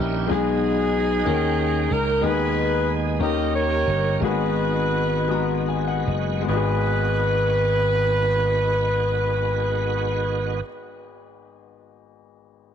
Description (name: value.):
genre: slow gospel.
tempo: 48-62 BPM (dotted quarters).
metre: 6/8.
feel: straight.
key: G# minor.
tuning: A4 = 436 Hz.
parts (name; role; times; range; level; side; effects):
warm horn section; melody; 0.0-10.6 s; D#4 to D#5; -23 LUFS; equal; none.
clear baby grand piano; accompaniment; 0.0-12.7 s; G#1 to A#5; -27 LUFS; left 10 dB; none.
bright tonewheel organ; sustained chords; 0.0-10.6 s; D#3 to G5; -32 LUFS; right 13 dB; fast rotary speaker, overdrive, chorus vibrato.
slap bass; bass; 0.0-10.6 s; F#1 to D#2; -25 LUFS; right 2 dB; none.
room: light reverb, studio ambience.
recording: 1960s-style stereo with parts hard left and right.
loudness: -20 LUFS.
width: side -8 dB against mid.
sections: 0.0-6.5 A section; 6.5-11.5 B section.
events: slowing down 2.2-6.5; grand piano fill 5.3-6.5.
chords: 0.3 G#m7/B; 1.3 D#7; 2.2 G#m/D#; 3.2 D#7; 4.2 G#m7.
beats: | 0.30 1.27 | 2.23 3.20 | 4.22 5.30 | 6.49 7.74 | 8.99 10.24.